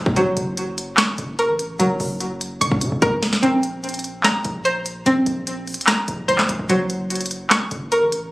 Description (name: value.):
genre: hip hop, trap.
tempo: 147 BPM.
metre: 4/4.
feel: half-time.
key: Bb harmonic minor.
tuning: A4 = 443 Hz.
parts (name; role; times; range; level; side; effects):
string-like resonator pluck; arpeggios; 0.0-8.3 s; Gb3 to Db6; -20 LUFS; equal; chorus, phaser, digital delay.
hard-hitting 808-style bass; bass; 0.0-8.3 s; Gb1 to Db3; -28 LUFS; equal; none.
trap drum kit; drums; 0.1-8.2 s; handclaps, hi-hat, kick drum, snare drum; -20 LUFS; equal; none.
room: moderate scoring stage reverb, RT60 2.0 s.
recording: recorded on a phone in the room, club reverb, compression, lossy compression artefacts.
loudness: -18 LUFS.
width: side -20 dB against mid.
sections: 0.0-3.4 A section; 3.4-8.3 B section.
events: drum fill 2.6-3.4.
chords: 0.2 Gb; 3.4 Bbsus2; 6.7 Gb.